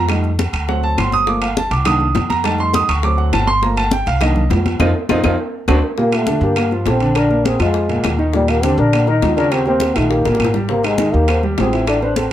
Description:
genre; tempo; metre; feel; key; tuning
Afro-Cuban jazz; 204 BPM; 4/4; straight; G minor; A4 = 440 Hz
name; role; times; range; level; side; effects
warm concert grand piano; accompaniment; 0.0-12.3 s; Bb2 to Eb6; -18 LUFS; right 1 dB; none
upright bass; bass; 0.0-12.3 s; G1 to G2; -19 LUFS; equal; none
bongos; percussion; 0.1-12.3 s; none; -27 LUFS; left 7 dB; none
claves; percussion; 0.1-12.0 s; none; -28 LUFS; left 2 dB; none
congas; percussion; 0.1-12.3 s; none; -24 LUFS; left 3 dB; none
timbales; percussion; 0.1-12.3 s; none; -25 LUFS; right 3 dB; none
trombone with bucket mute; melody; 6.0-12.3 s; G3 to Eb4; -18 LUFS; left 1 dB; none
steel pan; second line; 6.0-12.3 s; Eb4 to B4; -24 LUFS; left 2 dB; none
room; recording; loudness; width
light reverb; none; -14 LUFS; side -12 dB against mid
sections
0.0-6.0 A section; 6.0-12.3 B section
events
grand piano solo 0.0-6.0; band accent 4.8-6.0; drum fill 5.5-6.0, 10.3-10.7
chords
0.1 F7; 0.7 D7; 1.3 Gm7; 1.9 Cm7; 2.4 F7; 3.0 D7; 3.6 Gm7; 4.2 Cm7; 4.8 F5; 5.4 D7; 6.0 Gm9; 7.2 Bb7; 8.3 Eb5; 9.5 Eb6; 10.7 Abmaj7

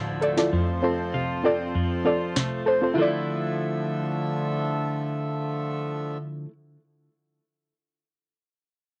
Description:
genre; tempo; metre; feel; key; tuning
dancehall; 98 BPM; 4/4; straight; D minor; A4 = 440 Hz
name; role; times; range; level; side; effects
soft round pluck; accompaniment; 0.0-6.2 s; F2 to D5; -26 LUFS; equal; chorus, cassette tape
hand-pumped harmonium; sustained chords; 0.0-6.2 s; D2 to E5; -33 LUFS; equal; cassette tape
twelve-string electric guitar; arpeggios; 0.0-6.5 s; F2 to F4; -32 LUFS; equal; cassette tape, tape echo
downlifter; sound effects; 0.1-3.0 s; none; barely audible; none; none
afro-pop drum kit; drums; 0.2-2.5 s; hi-hat, snare drum; -32 LUFS; equal; cassette tape
room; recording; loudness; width
light reverb; home recording on cassette, nothing above 10.6 kHz; -26 LUFS; mono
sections
0.0-3.0 A section; 3.0-5.4 B section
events
none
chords
0.0 Dmadd9; 0.5 F; 3.0 Dmadd9

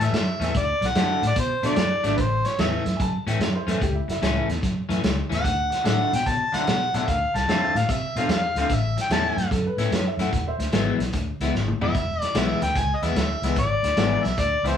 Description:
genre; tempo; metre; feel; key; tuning
electric blues shuffle; 147 BPM; 4/4; swing 67% on 8ths; A major; A4 = 440 Hz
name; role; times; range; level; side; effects
overdriven harmonica; melody; 0.0-14.8 s; B4 to A5; -24 LUFS; equal; none
electric guitar at the edge of break-up; riff; 0.0-14.8 s; A2 to F4; -28 LUFS; left 3 dB; phaser
vintage muted fingered electric bass; bass; 0.0-14.7 s; E1 to D3; -26 LUFS; left 1 dB; none
vintage drum kit; drums; 0.0-14.7 s; hi-hat, kick drum, snare drum, toms; -27 LUFS; equal; none
dark upright piano; second line; 3.0-4.5, 9.5-10.9 s; E4 to A5; -30 LUFS; right 1 dB; none
room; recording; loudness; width
moderate studio ambience, RT60 0.5 s; band playing live in one room, studio reverb; -21 LUFS; side -8 dB against mid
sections
0.0-14.8 A section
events
drum fill 11.5-12.0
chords
0.0 A; 0.5 D; 2.2 A; 5.4 D; 7.1 Dm7; 8.7 A; 10.3 E

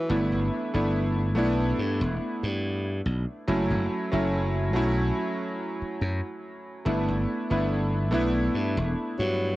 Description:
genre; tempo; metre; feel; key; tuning
vaporwave; 71 BPM; 4/4; swing 53% on 16ths; unclear; A4 = 440 Hz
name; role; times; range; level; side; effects
clear tenor saxophone; melody; 0.0-0.2, 9.2-9.6 s; E3 to F#3; -32 LUFS; equal; vintage 12-bit sampler grit, tape echo
clear electric grand piano; accompaniment; 0.0-9.6 s; F#3 to E4; -27 LUFS; equal; analog chorus, analog delay
glassy slap bass; bass; 0.1-9.6 s; E1 to G2; -27 LUFS; equal; none
room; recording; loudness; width
light reverb, small room ambience; worn, warbling old tape, cassette tape, warbly pitch drift; -24 LUFS; side -17 dB against mid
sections
0.0-9.6 A section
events
none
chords
0.1 G69; 3.5 F#m7; 6.9 G69

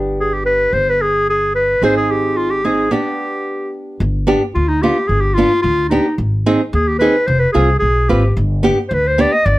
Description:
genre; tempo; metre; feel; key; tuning
klezmer; 110 BPM; 2/4; straight; G phrygian dominant; A4 = 440 Hz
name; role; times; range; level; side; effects
nylon-string guitar; accompaniment; 0.0-9.3 s; B3 to B4; -17 LUFS; right 2 dB; none
upright bass; bass; 0.0-9.6 s; F1 to Eb2; -18 LUFS; equal; none
warm clarinet; melody; 0.2-9.6 s; Eb4 to Eb5; -15 LUFS; equal; none
room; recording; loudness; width
light reverb; none; -13 LUFS; side -17 dB against mid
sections
0.0-4.0 A section; 4.0-9.6 A section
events
break 2.9-4.0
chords
0.0 G; 1.8 Ab; 2.9 G; 6.2 Ab; 7.3 Fm; 8.4 G

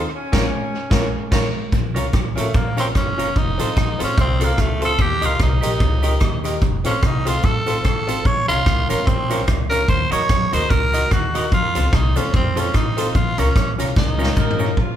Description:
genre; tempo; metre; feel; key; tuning
ska; 147 BPM; 4/4; swing 58% on 8ths; Bb harmonic minor; A4 = 440 Hz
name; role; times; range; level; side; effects
mellow horn section; melody; 0.0-1.3, 14.4-15.0 s; Db4 to Bb4; -27 LUFS; left 1 dB; none
tack piano; stabs; 0.0-14.7 s; C4 to Bb4; -29 LUFS; left 3 dB; none
upright bass; bass; 0.0-15.0 s; F1 to Gb2; -23 LUFS; equal; none
semi-hollow electric guitar; accompaniment; 0.3-14.7 s; F4 to Eb5; -28 LUFS; right 2 dB; spring reverb
swinging big-band drum kit; drums; 0.3-14.9 s; crash cymbal, hi-hat, kick drum, rim click, snare drum, toms; -20 LUFS; equal; none
cabasa; percussion; 1.7-14.7 s; none; -42 LUFS; right 5 dB; none
raspy tenor saxophone; melody; 2.4-14.7 s; A3 to Db5; -22 LUFS; right 1 dB; none
room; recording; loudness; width
light reverb; band playing live in one room; -16 LUFS; side -10 dB against mid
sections
0.0-1.7 A section; 1.7-14.8 B section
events
band accent 0.1-1.7; tenor saxophone solo 1.7-14.8; drum fill 14.0-14.8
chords
0.1 Bbm; 3.4 F; 5.0 Eb; 6.6 F; 8.3 Bbm; 9.9 Ebm; 11.5 F; 13.1 Bbm

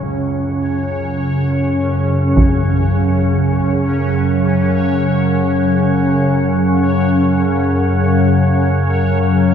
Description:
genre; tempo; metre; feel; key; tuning
dark ambient drone; free time; none; none; unclear; A4 = 438 Hz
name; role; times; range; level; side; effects
warm grand piano; arpeggios; 0.0-9.5 s; C#2 to G#3; -35 LUFS; equal; none
organ-like drone; drone; 0.0-9.5 s; F#2 to C#3; -13 LUFS; equal; ensemble chorus, built-in reverb
bubbling stepped-filter texture; texture; 0.0-9.5 s; C#4 to C#5; -23 LUFS; left 2 dB; chorus, built-in reverb
taiko ensemble; percussion; 2.4-2.6 s; none; -19 LUFS; right 1 dB; low-pass filter on perc
room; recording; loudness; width
wet cathedral reverb, RT60 5.8 s; dark, warm production; -13 LUFS; side -8 dB against mid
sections
0.0-9.5 A section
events
fade-in on synth texture 0.0-9.5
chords
0.0 F#sus2

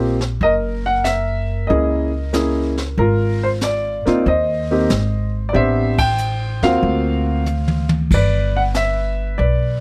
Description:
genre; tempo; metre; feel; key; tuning
jazz piano trio; 94 BPM; 4/4; swing 69% on 8ths; unclear; A4 = 440 Hz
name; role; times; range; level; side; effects
warm grand piano; melody; 0.0-9.8 s; Bb3 to G5; -21 LUFS; equal; none
upright bass; bass; 0.0-9.8 s; Gb1 to Eb2; -22 LUFS; equal; none
jazz brush drum kit; drums; 0.2-9.8 s; brushed snare drum, crash cymbal, hi-hat, kick drum, ride cymbal, snare drum, toms; -27 LUFS; equal; none
room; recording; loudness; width
little or no reverb; close, detailed microphones; -18 LUFS; mono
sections
0.0-9.8 A section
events
band accent 5.9-6.2; drum fill 7.5-8.1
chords
0.4 Gb9; 3.0 Ab69; 5.5 Am11; 6.8 D7alt; 8.1 G

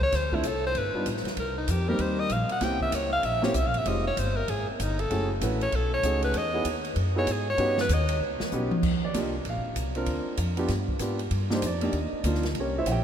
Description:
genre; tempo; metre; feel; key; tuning
jazz, small-group swing and bop; 193 BPM; 4/4; swing 62% on 8ths; Eb major from 8.8 s; A4 = 437 Hz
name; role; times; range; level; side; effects
edgy alto saxophone; melody; 0.0-8.2 s; C4 to G5; -29 LUFS; equal; none
upright bass; bass; 0.0-13.0 s; Eb1 to G#2; -29 LUFS; equal; none
open jazz drum kit; drums; 0.0-13.0 s; crash cymbal, hi-hat, kick drum, ride cymbal, snare drum, toms; -34 LUFS; right 1 dB; none
warm grand piano; accompaniment; 0.3-13.0 s; G3 to G5; -30 LUFS; right 1 dB; none
room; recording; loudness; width
wet cathedral reverb, RT60 5.9 s; in a vast, echoing space; -24 LUFS; side -9 dB against mid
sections
0.0-8.8 A section; 8.8-13.0 A section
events
alto saxophone solo 0.0-8.8; drum fill 8.5-8.8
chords
0.1 Dm9; 0.8 G7b13; 1.4 Cm7; 2.6 C7b9; 3.9 Fm9; 5.1 Gbm7; 5.7 B13; 6.3 Emaj9; 7.6 Eb7alt; 8.8 Ebmaj9; 10.1 Bb69/D; 10.7 G7; 11.3 Ebmaj9

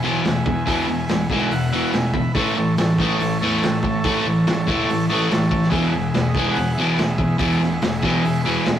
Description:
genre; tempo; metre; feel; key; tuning
garage rock duo or trio; 142 BPM; 4/4; straight; E major; A4 = 441 Hz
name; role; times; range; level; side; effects
combo organ; sustained chords; 0.0-8.8 s; G#4 to B5; -26 LUFS; right 2 dB; none
crunchy overdriven guitar; riff; 0.0-8.8 s; E2 to A3; -19 LUFS; equal; none
fuzz picked electric bass; bass; 0.0-8.8 s; E1 to A2; -29 LUFS; equal; overdrive
crunchy breakbeat drum kit; drums; 0.2-8.8 s; hi-hat, kick drum, snare drum; -25 LUFS; equal; none
room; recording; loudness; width
wet stone room reverb, RT60 1.1 s; rough rehearsal-room recording, warm saturation; -17 LUFS; side -10 dB against mid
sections
0.0-8.8 A section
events
none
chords
0.0 E; 2.4 A; 5.7 E

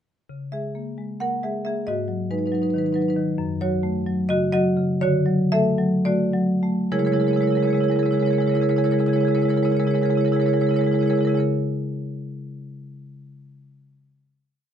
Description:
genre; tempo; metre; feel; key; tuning
classical, contemporary piece for solo marimba; 196-281 BPM (eighths); 7/8; rubato; C# minor; A4 = 441 Hz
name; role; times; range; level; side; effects
marimba with medium hard mallets; solo; 0.3-11.4 s; F#2 to F#5; -20 LUFS; equal; none
room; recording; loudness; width
light reverb; close, detailed microphones; -19 LUFS; side -8 dB against mid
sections
0.3-6.9 A section; 6.9-10.9 final chord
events
slowing down 2.6-6.9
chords
0.3 C#m6; 1.9 G#m7; 3.4 F#m6; 5.0 Dmaj7; 6.9 C#m6

